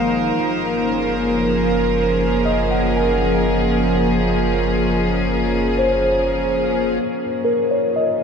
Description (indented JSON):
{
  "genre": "ambient",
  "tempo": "72 BPM",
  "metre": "4/4",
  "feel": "straight",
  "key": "unclear",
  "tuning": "A4 = 445 Hz",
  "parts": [
    { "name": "warm studio string section", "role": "sustained chords", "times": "0.0-8.2 s", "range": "Db3 to C5", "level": "-19 LUFS", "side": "right 1 dB", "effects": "none" },
    { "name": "mellow tine electric piano", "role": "arpeggios", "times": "0.0-8.2 s", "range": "Bb4 to Ab5", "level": "-22 LUFS", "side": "left 1 dB", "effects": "phaser, diffuse ambient delay" },
    { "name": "warm sub bass", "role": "bass", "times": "0.0-7.0 s", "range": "Gb1 to Ab1", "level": "-25 LUFS", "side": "right 1 dB", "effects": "none" },
    { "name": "bowed-like drone", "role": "drone", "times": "0.0-8.2 s", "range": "F3 to F4", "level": "-23 LUFS", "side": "left 2 dB", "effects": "built-in reverb" }
  ],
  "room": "wet huge ambient reverb, RT60 8.4 s",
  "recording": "dark, warm production",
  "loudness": "-16 LUFS",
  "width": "side -6 dB against mid",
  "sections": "0.0-7.0 A section; 7.0-8.2 B section",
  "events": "none",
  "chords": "0.4 Gbmaj9; 7.0 Db",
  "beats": "| 0.36 1.20 2.03 2.86 | 3.70 4.53 5.36 6.20 | 7.03 7.86"
}